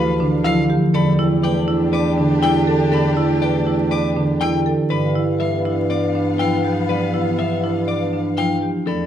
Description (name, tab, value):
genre	classical, minimalist pattern music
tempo	121 BPM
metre	4/4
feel	straight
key	unclear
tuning	A4 = 444 Hz
part	clean electric guitar	melody	0.0-9.1 s	A4 to G5	-27 LUFS	left 8 dB	none
part	concert harp	accompaniment	0.0-9.1 s	D3 to D4	-19 LUFS	equal	none
part	rich symphonic violin section	sustained chords	0.0-9.1 s	B3 to F5	-28 LUFS	left 2 dB	none
part	marimba with medium hard mallets	arpeggios	0.0-9.1 s	D4 to D5	-22 LUFS	right 4 dB	none
part	rich violin	arpeggios	0.0-9.1 s	F5 to D6	-30 LUFS	left 3 dB	none
part	mellow bass clarinet	bass	0.0-9.1 s	D2 to G2	-25 LUFS	left 2 dB	none
room	wet recital hall reverb, RT60 1.5 s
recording	dark, warm production, vinyl crackle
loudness	-16 LUFS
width	side -10 dB against mid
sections	0.0-9.1 A section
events	none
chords	0.0 Dm69; 0.9 Em7; 4.9 G7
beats	0.44 | 0.94 1.44 1.93 2.43 | 2.92 3.42 3.91 4.41 | 4.91 5.40 5.90 6.39 | 6.89 7.39 7.88 8.38 | 8.87